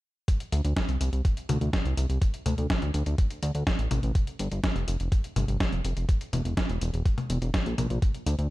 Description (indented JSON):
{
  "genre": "italo disco",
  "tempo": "124 BPM",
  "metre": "4/4",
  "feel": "straight",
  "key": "D minor",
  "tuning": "A4 = 441 Hz",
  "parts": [
    { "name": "dusty soul sampler-style drum kit", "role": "drums", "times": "0.3-8.5 s", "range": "hi-hat, snare drum, toms", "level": "-31 LUFS", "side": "left 1 dB", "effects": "studio reverb" },
    { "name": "electronic kick drum", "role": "drums", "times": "0.3-8.1 s", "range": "none", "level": "-25 LUFS", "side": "equal", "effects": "studio reverb" },
    { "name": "chorused synth bass", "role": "bass", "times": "0.5-8.5 s", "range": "E1 to D2", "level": "-27 LUFS", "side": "equal", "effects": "tube saturation" }
  ],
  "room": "little or no reverb",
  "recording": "dark, warm production",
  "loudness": "-25 LUFS",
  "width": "side -18 dB against mid",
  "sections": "0.3-8.5 A section",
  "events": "none",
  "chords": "none",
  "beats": "| 0.28 0.76 1.25 1.73 | 2.22 2.70 3.18 3.67 | 4.15 4.63 5.12 5.60 | 6.09 6.57 7.05 7.54 | 8.02"
}